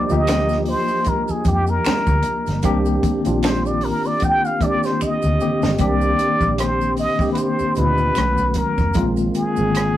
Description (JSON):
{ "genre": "R&B, neo-soul", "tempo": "76 BPM", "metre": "4/4", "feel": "swing 56% on 16ths", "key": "C minor", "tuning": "A4 = 441 Hz", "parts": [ { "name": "trumpet with plunger mute", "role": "melody", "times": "0.0-10.0 s", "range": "G4 to G5", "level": "-21 LUFS", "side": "left 1 dB", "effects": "none" }, { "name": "tine electric piano", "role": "accompaniment", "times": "0.0-10.0 s", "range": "Bb2 to Eb5", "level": "-21 LUFS", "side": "left 1 dB", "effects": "fast stereo tremolo" }, { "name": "vintage muted fingered electric bass", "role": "bass", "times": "0.1-10.0 s", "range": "F1 to F2", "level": "-22 LUFS", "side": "equal", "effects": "none" }, { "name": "maracas and finger snaps", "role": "percussion", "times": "0.1-10.0 s", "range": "none", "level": "-39 LUFS", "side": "right 3 dB", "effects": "none" }, { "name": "compact cocktail drum kit", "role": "drums", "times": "0.3-10.0 s", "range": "finger snaps, hi-hat, kick drum, rim click, snare drum", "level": "-23 LUFS", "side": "right 1 dB", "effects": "none" }, { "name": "dark studio string section", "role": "sustained chords", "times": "5.8-10.0 s", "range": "Bb2 to C4", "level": "-35 LUFS", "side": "left 1 dB", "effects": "none" } ], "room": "wet small room ambience, RT60 0.5 s", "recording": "rough rehearsal-room recording", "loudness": "-16 LUFS", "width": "side -13 dB against mid", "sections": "0.0-5.8 A section; 5.8-10.0 B section", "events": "muted trumpet solo 0.0-5.8; drum fill 5.0-5.8", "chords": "0.0 Ebmaj9; 5.8 Cm9; 8.2 B9; 9.0 Bb9sus4" }